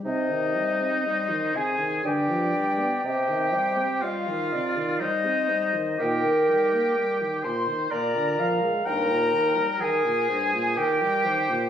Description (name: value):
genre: classical, slow romantic movement for wind quintet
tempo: 61 BPM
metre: 3/4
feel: rubato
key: C minor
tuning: A4 = 440 Hz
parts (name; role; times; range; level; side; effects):
- clear oboe; second line; 0.0-11.7 s; Eb4 to C5; -28 LUFS; equal; none
- mellow French horn; accompaniment; 0.0-11.7 s; G2 to C4; -31 LUFS; right 1 dB; none
- silver concert flute; melody; 0.1-11.7 s; Eb5 to C6; -28 LUFS; left 4 dB; none
- mellow bassoon; bass; 0.1-9.7 s; Eb2 to Eb3; -28 LUFS; equal; none
- warm clarinet; accompaniment; 1.1-11.7 s; Bb4 to G5; -28 LUFS; right 2 dB; none
room: wet recital hall reverb, RT60 1.7 s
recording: recorded on a phone in the room, studio reverb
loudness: -22 LUFS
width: side -9 dB against mid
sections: 0.0-11.7 A section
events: none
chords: 0.0 Cm; 2.0 G7; 3.0 Cm; 6.0 Eb/Bb; 7.9 Bb7; 8.9 Eb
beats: | 0.05 1.06 2.05 | 3.05 4.03 5.01 | 5.99 6.96 7.91 | 8.86 9.81 10.77